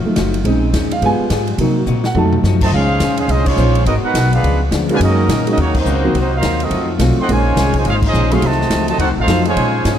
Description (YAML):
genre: jazz, big band swing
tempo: 210 BPM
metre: 4/4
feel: swing 61% on 8ths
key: Bb minor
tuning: A4 = 443 Hz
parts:
  - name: archtop guitar, miked and amplified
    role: accompaniment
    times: 0.0-10.0 s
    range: Gb2 to Bb4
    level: -24 LUFS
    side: left 5 dB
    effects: none
  - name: warm saxophone section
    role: sustained chords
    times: 0.0-10.0 s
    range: Cb3 to G4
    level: -27 LUFS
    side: left 2 dB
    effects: none
  - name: upright bass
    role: bass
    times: 0.0-10.0 s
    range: Gb1 to C3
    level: -17 LUFS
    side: equal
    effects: none
  - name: warm concert grand piano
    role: accompaniment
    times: 0.1-9.4 s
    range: Gb3 to A5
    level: -19 LUFS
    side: right 2 dB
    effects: none
  - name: swinging big-band drum kit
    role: drums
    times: 0.2-9.9 s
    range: crash cymbal, hi-hat, kick drum, ride cymbal, snare drum, toms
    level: -22 LUFS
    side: left 1 dB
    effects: none
  - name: warm trumpet section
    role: melody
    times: 2.6-10.0 s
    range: Ab3 to C6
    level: -19 LUFS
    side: right 1 dB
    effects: none
  - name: warm trombone section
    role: second line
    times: 2.6-10.0 s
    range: Cb3 to Gb4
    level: -22 LUFS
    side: right 2 dB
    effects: none
room: light reverb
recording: dark, warm production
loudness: -13 LUFS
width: side -9 dB against mid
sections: 0.0-2.7 A section; 2.7-10.0 B section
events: grand piano solo 0.0-2.7; drum fill 1.9-2.4; band accent 3.4, 5.7, 8.0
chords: 0.4 Bbm11; 1.0 G7b9; 1.6 Cm7b5; 2.2 F7b9; 2.7 Bbm11; 3.9 Abm9; 4.4 Db7b9; 5.0 Gb6; 6.1 Cm7b5; 6.7 F7b9; 7.3 Bbm11; 8.4 F7b9